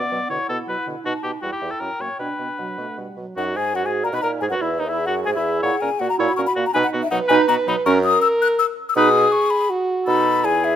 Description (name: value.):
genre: quick classical-period movement for wind quintet.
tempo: 161 BPM.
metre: 3/4.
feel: rubato.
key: B minor, B major from 3.4 s.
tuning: A4 = 440 Hz.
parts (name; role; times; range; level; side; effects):
mellow hollow concert flute; melody; 0.0-10.8 s; D#5 to F#6; -22 LUFS; left 6 dB; none.
warm oboe; second line; 0.0-10.8 s; D#4 to D5; -25 LUFS; left 2 dB; none.
dark clarinet; accompaniment; 0.0-10.8 s; F#3 to B4; -27 LUFS; right 8 dB; none.
mellow French horn; accompaniment; 0.0-10.8 s; D3 to B4; -23 LUFS; right 1 dB; none.
warm bassoon; bass; 0.1-10.8 s; D#2 to B2; -26 LUFS; right 3 dB; none.
room: light reverb.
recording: close, detailed microphones.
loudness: -18 LUFS.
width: side -10 dB against mid.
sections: 0.0-3.4 A section; 3.4-10.8 A section.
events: none.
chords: 0.0 Bm; 1.0 B7; 1.4 Em; 1.8 F#; 2.2 Bm; 3.4 B/F#; 4.5 Emaj9/D#; 5.6 F#7/A#; 6.7 B; 7.9 F#; 9.0 B; 10.1 B7.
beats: 0.30 0.67 | 1.04 1.42 1.80 | 2.20 2.59 2.98 | 3.37 3.75 4.12 | 4.50 4.88 5.26 | 5.63 6.00 6.37 | 6.74 7.11 7.49 | 7.86 8.23 8.59 | 8.96 9.33 9.70 | 10.07 10.45.